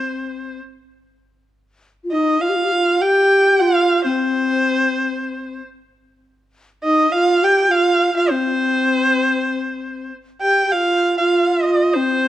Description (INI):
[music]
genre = chinese traditional, Chinese chamber ensemble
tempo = 101 BPM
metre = 4/4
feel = rubato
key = C yu mode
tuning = A4 = 440 Hz
[part]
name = clear erhu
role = melody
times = 0.0-12.3 s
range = C5 to G5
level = -18 LUFS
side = right 1 dB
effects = none
[part]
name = breathy low xiao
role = second line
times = 0.0-12.3 s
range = C4 to G4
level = -18 LUFS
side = left 1 dB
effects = none
[sound]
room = light reverb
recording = dark, warm production, faint mains hum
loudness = -15 LUFS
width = side -13 dB against mid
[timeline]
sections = 0.0-10.7 A section; 10.7-12.3 B section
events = none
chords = none